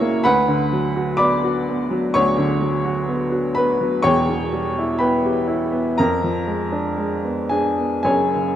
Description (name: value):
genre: classical, romantic character piece for solo piano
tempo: 54-65 BPM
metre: 4/4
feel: rubato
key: B minor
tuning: A4 = 439 Hz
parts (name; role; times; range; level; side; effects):
- clear upright piano; solo; 0.0-8.6 s; E1 to D6; -17 LUFS; equal; none
room: moderate scoring stage reverb, RT60 1.9 s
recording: none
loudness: -17 LUFS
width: side -11 dB against mid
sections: 0.0-8.6 A section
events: none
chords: 0.2 Bm/D; 4.0 Em; 6.0 Fdim7